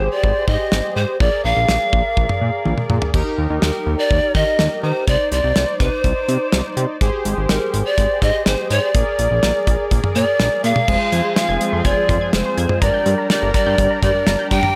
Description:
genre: synth-pop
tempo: 124 BPM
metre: 4/4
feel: straight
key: unclear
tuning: A4 = 436 Hz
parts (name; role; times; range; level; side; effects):
- breathy polished pan flute; melody; 0.0-14.8 s; Bb4 to G5; -22 LUFS; equal; tape echo
- analog synth brass; accompaniment; 0.0-14.7 s; D4 to D5; -28 LUFS; equal; chorus
- fat analog bass; bass; 0.0-14.6 s; F1 to Eb3; -23 LUFS; equal; none
- damped 70s drum kit; drums; 0.2-14.7 s; crash cymbal, hi-hat, kick drum, snare drum, splash cymbal, toms; -22 LUFS; equal; none
- lush unison pad; sustained chords; 10.9-14.8 s; F3 to Bb4; -29 LUFS; equal; chorus
- warbly dusty pluck; arpeggios; 10.9-14.7 s; G3 to Ab6; -27 LUFS; equal; chorus, tape echo
room: light reverb, small room ambience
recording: none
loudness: -18 LUFS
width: mono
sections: 0.0-10.9 A section; 10.9-14.8 B section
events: drum fill 2.7-3.1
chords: 0.0 Abmaj7; 1.2 Bb7; 3.1 Eb; 5.1 Cmadd9; 7.0 Abmaj7; 8.9 Bb7; 10.9 Fm; 12.8 Gm

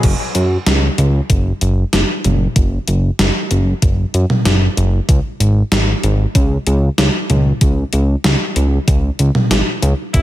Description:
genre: synthwave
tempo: 95 BPM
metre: 4/4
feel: straight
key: unclear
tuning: A4 = 440 Hz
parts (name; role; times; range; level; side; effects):
- fat analog bass; bass; 0.0-10.2 s; F#1 to F#2; -14 LUFS; equal; none
- electronic kick drum; drums; 0.0-10.2 s; none; -14 LUFS; equal; overdrive
- gated 80s digital drum machine; drums; 0.0-10.2 s; crash cymbal, hi-hat, snare drum, toms; -18 LUFS; equal; gated reverb, gated reverb snare, overdrive
- edgy tenor saxophone; melody; 10.1-10.2 s; E4; -32 LUFS; left 1 dB; none
room: light reverb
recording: none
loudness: -12 LUFS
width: side -14 dB against mid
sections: 0.0-10.2 A section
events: none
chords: 0.0 F#5; 5.1 C#5

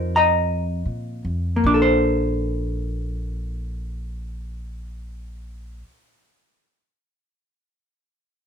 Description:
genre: jazz ballad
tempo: 50 BPM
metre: 4/4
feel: swing 68% on 8ths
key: Bb major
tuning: A4 = 439 Hz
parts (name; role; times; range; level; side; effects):
- vintage hollow-body jazz guitar; accompaniment; 0.0-6.0 s; F3 to D6; -19 LUFS; left 1 dB; none
- upright bass; bass; 0.0-5.8 s; Bb1 to Bb2; -27 LUFS; equal; none
room: light reverb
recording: none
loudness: -20 LUFS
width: side -7 dB against mid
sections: 0.0-1.6 A section; 1.6-6.4 B section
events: slowing down 0.0-1.6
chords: 0.0 F7sus4; 1.6 Bbmaj9

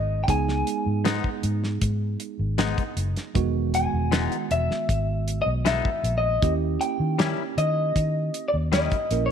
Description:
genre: straight-eighth soul blues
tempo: 78 BPM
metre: 4/4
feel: straight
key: G# minor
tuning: A4 = 440 Hz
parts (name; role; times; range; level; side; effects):
- electric guitar through a small old amp; melody; 0.0-9.3 s; C#5 to G#5; -26 LUFS; left 2 dB; slapback echo
- tine electric piano; accompaniment; 0.0-9.3 s; D#3 to A#4; -30 LUFS; right 13 dB; none
- vintage muted fingered electric bass; bass; 0.0-9.3 s; E1 to D#3; -25 LUFS; equal; none
- damped 70s drum kit; drums; 0.3-9.3 s; hi-hat, kick drum, snare drum; -27 LUFS; equal; none
- direct-recorded clean electric guitar; stabs; 1.0-9.0 s; G#2 to E4; -30 LUFS; left 11 dB; none
room: light reverb, small room reverb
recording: 1960s-style stereo with parts hard left and right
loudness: -22 LUFS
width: side -8 dB against mid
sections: 0.0-9.3 A section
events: none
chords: 0.0 G#m; 3.4 Emaj7; 6.4 D#7b9

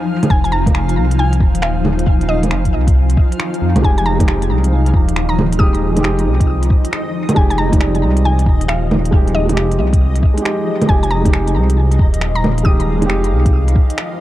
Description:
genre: future garage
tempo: 136 BPM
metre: 4/4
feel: swing 64% on 16ths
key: F minor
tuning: A4 = 440 Hz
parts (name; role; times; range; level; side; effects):
- granular cloud pad; sustained chords; 0.0-14.2 s; F3 to Ab5; -22 LUFS; left 1 dB; built-in reverb, vintage 12-bit sampler grit, sidechain pumping
- backwards swelling texture; texture; 0.0-14.2 s; Eb5 to F5; -31 LUFS; left 1 dB; built-in reverb
- organic electronic drum kit; drums; 0.2-14.1 s; bongos, finger snaps, hi-hat; -20 LUFS; right 1 dB; none
- mallet-like synth pluck; melody; 0.3-13.3 s; Eb5 to Eb6; -24 LUFS; equal; chorus, tape echo
- dark detuned saw bass; bass; 0.3-13.7 s; Eb1 to F2; -16 LUFS; equal; sidechain pumping
- electronic kick drum; drums; 0.3-13.9 s; none; -13 LUFS; equal; none
- felt-muted upright piano; accompaniment; 3.8-14.2 s; G3 to G4; -21 LUFS; right 2 dB; sidechain pumping, dub echo
room: light reverb, digital ambience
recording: echo-heavy mix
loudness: -12 LUFS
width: side -14 dB against mid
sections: 0.0-14.2 A section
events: none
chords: 0.0 Fm7

